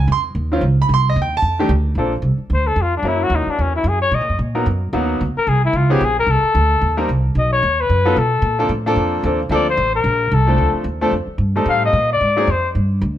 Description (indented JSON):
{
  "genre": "jazz, small-group swing and bop",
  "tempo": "223 BPM",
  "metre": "4/4",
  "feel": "swing 58% on 8ths",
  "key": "Bb major",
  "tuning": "A4 = 438 Hz",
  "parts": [
    { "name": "clear grand piano", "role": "accompaniment", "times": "0.0-12.5 s", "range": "Eb3 to C6", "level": "-20 LUFS", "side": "equal", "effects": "none" },
    { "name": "upright bass", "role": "bass", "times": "0.0-13.2 s", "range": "A1 to B2", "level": "-18 LUFS", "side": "right 1 dB", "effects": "none" },
    { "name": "clear flugelhorn", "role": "melody", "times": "2.5-12.7 s", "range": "Db4 to F5", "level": "-18 LUFS", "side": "left 3 dB", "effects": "plate reverb" }
  ],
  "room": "light reverb",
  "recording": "none",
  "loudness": "-15 LUFS",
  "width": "side -12 dB against mid",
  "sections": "0.0-2.0 A section; 2.0-10.6 A section; 10.6-13.2 A section",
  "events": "flugelhorn solo 2.0-13.2",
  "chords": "0.0 Dbmaj9; 0.9 Cm; 1.4 F13; 2.0 Bbmaj9; 3.0 Gb7; 4.1 Bmaj7; 5.2 C7sus2; 5.7 Db9; 6.3 Cm7; 7.4 B7; 8.4 Bbmaj9; 10.6 Dm7; 11.7 Am7b5; 12.2 Ab9"
}